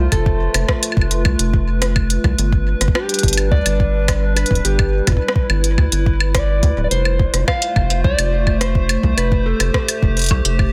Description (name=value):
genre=IDM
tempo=106 BPM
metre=4/4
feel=straight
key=F lydian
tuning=A4 = 441 Hz
part: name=mellow electric guitar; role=melody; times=0.0-10.6 s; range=F4 to F5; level=-26 LUFS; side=equal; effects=digital delay
part: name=warbly tape-like pad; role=sustained chords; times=0.0-10.7 s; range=G3 to C5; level=-26 LUFS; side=equal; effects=chorus, built-in reverb, vintage 12-bit sampler grit
part: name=rubbery square bass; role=bass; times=0.0-10.7 s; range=D1 to D2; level=-20 LUFS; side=equal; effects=none
part: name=electronic kick drum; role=drums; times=0.1-10.7 s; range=none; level=-20 LUFS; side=equal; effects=overdrive, studio reverb
part: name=organic electronic drum kit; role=drums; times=0.1-10.7 s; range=hi-hat, rim click, woodblock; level=-23 LUFS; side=equal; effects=overdrive, studio reverb, digital delay
room=little or no reverb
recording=dense, heavily limited modern master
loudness=-17 LUFS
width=mono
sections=0.0-10.7 A section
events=none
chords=0.0 F; 2.4 G; 6.9 F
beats=| 0.12 0.69 1.25 1.82 | 2.38 2.95 3.52 4.08 | 4.65 5.21 5.78 6.35 | 6.91 7.48 8.04 8.61 | 9.18 9.74 10.31